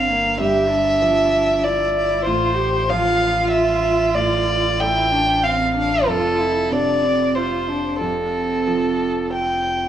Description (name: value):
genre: neoclassical piano and strings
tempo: 95 BPM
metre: 3/4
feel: uneven beats, rubato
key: unclear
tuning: A4 = 440 Hz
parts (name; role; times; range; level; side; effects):
- warm violin; melody; 0.0-9.9 s; A4 to G5; -18 LUFS; equal; cassette tape
- warm cello; second line; 0.0-9.7 s; Bb3 to G4; -23 LUFS; right 3 dB; cassette tape
- clear concert grand piano; accompaniment; 0.0-9.9 s; F2 to A3; -26 LUFS; equal; cassette tape
- warm sub bass; bass; 0.0-9.9 s; F1 to A1; -29 LUFS; equal; none
room: light reverb, studio reverb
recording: home recording on cassette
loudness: -16 LUFS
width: side -10 dB against mid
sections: 0.0-9.9 A section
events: none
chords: 0.0 G5; 2.3 Dm7/A; 6.1 F